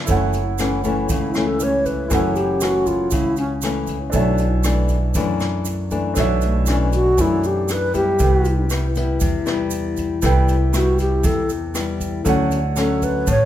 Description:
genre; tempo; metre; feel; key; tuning
bossa nova; 118 BPM; 4/4; straight; unclear; A4 = 439 Hz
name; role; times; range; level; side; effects
nylon-string guitar; accompaniment; 0.0-13.5 s; F#2 to E4; -22 LUFS; left 4 dB; none
warm concert grand piano; accompaniment; 0.0-13.5 s; D4 to G5; -27 LUFS; right 5 dB; none
upright bass; bass; 0.1-13.5 s; F#1 to F#2; -21 LUFS; right 1 dB; none
jazz brush drum kit; drums; 0.1-13.4 s; hi-hat, kick drum, rim click; -26 LUFS; right 1 dB; none
tube shaker; percussion; 0.1-13.5 s; none; -34 LUFS; right 9 dB; none
mellow wooden-headed alto flute; melody; 1.1-13.5 s; A3 to C#5; -20 LUFS; equal; none
room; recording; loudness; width
light reverb; none; -17 LUFS; side -12 dB against mid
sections
0.1-13.5 A section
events
alto flute solo 0.1-13.5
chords
0.1 F#m7; 4.1 Bm11; 8.2 Am9/C; 12.3 Dmaj7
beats
| 0.08 0.59 1.09 1.60 | 2.11 2.61 3.12 3.63 | 4.13 4.64 5.15 5.66 | 6.17 6.67 7.18 7.69 | 8.20 8.70 9.21 9.72 | 10.23 10.74 11.24 11.75 | 12.26 12.77 13.27

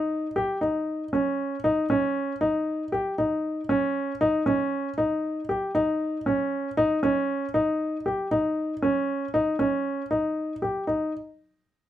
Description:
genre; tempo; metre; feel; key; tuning
progressive instrumental, progressive; 117 BPM; 5/4; straight; unclear; A4 = 438 Hz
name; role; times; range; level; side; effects
warm concert grand piano; solo; 0.0-11.1 s; Db4 to G4; -24 LUFS; equal; none
room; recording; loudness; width
moderate studio ambience, RT60 0.5 s; band playing live in one room; -24 LUFS; side -12 dB against mid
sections
0.0-10.9 A section; 10.9-11.9 B section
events
none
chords
none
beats
0.10 | 0.61 1.13 1.64 2.15 2.67 | 3.18 3.69 4.21 4.72 5.23 | 5.75 6.26 6.77 7.29 7.80 | 8.31 8.83 9.34 9.85 10.37 | 10.88

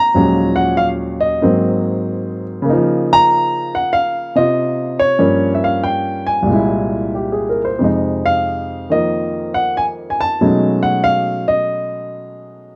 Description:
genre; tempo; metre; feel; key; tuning
solo jazz; 94 BPM; 4/4; swing 68% on 8ths, rubato; unclear; A4 = 439 Hz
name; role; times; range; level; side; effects
warm baby grand piano; solo; 0.0-12.8 s; C2 to Bb5; -16 LUFS; equal; none
room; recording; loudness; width
light reverb; dark, warm production; -16 LUFS; mono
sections
0.0-12.8 A section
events
none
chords
0.1 Ebm11; 1.4 Ab9; 2.7 Db69; 5.2 Gm7b5; 6.5 C7b13; 7.8 Fm7; 10.4 B13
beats
| 0.14 0.78 1.42 2.04 | 2.68 3.31 3.94 4.58 | 5.21 5.85 6.50 7.15 | 7.82 8.48 9.13 9.78 | 10.41 11.05 11.69 12.33

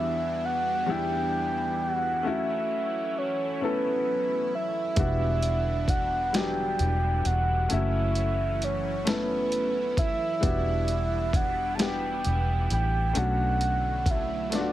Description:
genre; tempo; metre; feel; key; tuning
slow six-eight R&B; 44 BPM (dotted quarters); 6/8; straight; E dorian; A4 = 441 Hz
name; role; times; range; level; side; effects
soft octave-layered synth lead; melody; 0.0-14.7 s; B4 to A5; -28 LUFS; right 1 dB; chorus
clear grand piano; accompaniment; 0.0-14.7 s; E2 to A4; -32 LUFS; left 4 dB; none
lush unison pad; sustained chords; 0.0-14.7 s; D3 to E4; -36 LUFS; right 2 dB; chorus, phaser
vintage muted fingered electric bass; bass; 5.0-14.7 s; E1 to B1; -28 LUFS; equal; none
dusty soul sampler-style drum kit; drums; 5.0-14.7 s; hi-hat, kick drum, snare drum; -28 LUFS; equal; overdrive
room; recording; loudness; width
little or no reverb; none; -24 LUFS; side -14 dB against mid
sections
0.0-14.7 A section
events
drum fill 14.5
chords
0.0 Em9; 2.2 F#m7; 5.0 Em9; 7.7 F#m7; 10.4 Em9; 13.2 Bm7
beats
0.88 | 2.25 3.61 | 4.97 6.34 | 7.70 9.06 | 10.43 11.79 | 13.15 14.52

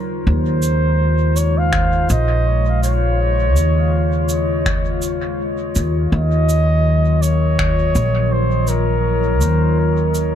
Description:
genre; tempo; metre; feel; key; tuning
ambient dub; 82 BPM; 4/4; swing 59% on 16ths; unclear; A4 = 444 Hz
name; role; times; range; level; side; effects
warbly tape-like pad; sustained chords; 0.0-10.3 s; Db3 to F4; -24 LUFS; left 2 dB; chorus, built-in reverb
upright bass; bass; 0.0-10.3 s; Bb1 to Eb2; -16 LUFS; equal; none
trumpet with bucket mute; melody; 0.3-10.3 s; Bb4 to F5; -21 LUFS; right 1 dB; dub echo
cabasa and finger snaps; drums; 0.6-10.3 s; none; -26 LUFS; equal; dub echo
electronic kick drum; drums; 1.7-7.8 s; none; -23 LUFS; equal; none
room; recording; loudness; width
light reverb, studio ambience; echo-heavy mix; -14 LUFS; side -9 dB against mid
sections
0.0-10.3 A section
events
none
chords
0.3 Db; 6.1 Ebm9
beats
| 0.27 1.00 1.73 2.46 | 3.20 3.93 4.66 5.39 | 6.12 6.85 7.59 8.32 | 9.05 9.78

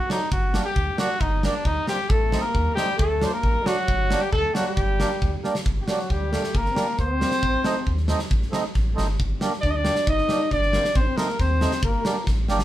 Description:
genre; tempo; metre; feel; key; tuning
klezmer; 135 BPM; 2/4; straight; G harmonic minor; A4 = 440 Hz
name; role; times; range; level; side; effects
warm cornet; melody; 0.0-12.2 s; D4 to Eb5; -25 LUFS; equal; none
mellow accordion; accompaniment; 0.1-12.6 s; F#3 to Eb4; -28 LUFS; right 3 dB; none
gated 80s drum kit; drums; 0.1-12.6 s; kick drum, snare drum; -26 LUFS; equal; none
sub bass with octave; bass; 0.3-12.6 s; G1 to Eb2; -25 LUFS; equal; none
clear trombone; second line; 2.1-12.2 s; F#3 to Eb4; -28 LUFS; left 2 dB; none
room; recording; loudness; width
moderate studio ambience, RT60 0.5 s; heard from further back in the room; -20 LUFS; side -13 dB against mid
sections
0.0-5.7 A section; 5.7-12.6 B section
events
drum fill 5.4, 12.3-12.6; cornet solo 5.7-12.6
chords
0.3 Gm; 2.1 Adim; 3.0 D; 3.9 Gm; 7.4 Adim; 9.2 Gm; 11.0 Adim; 11.8 Gm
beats
| 0.31 0.76 | 1.20 1.65 | 2.10 2.54 | 2.99 3.43 | 3.88 4.32 | 4.76 5.21 | 5.65 6.09 | 6.54 6.98 | 7.42 7.87 | 8.31 8.75 | 9.19 9.63 | 10.07 10.51 | 10.95 11.39 | 11.83 12.28

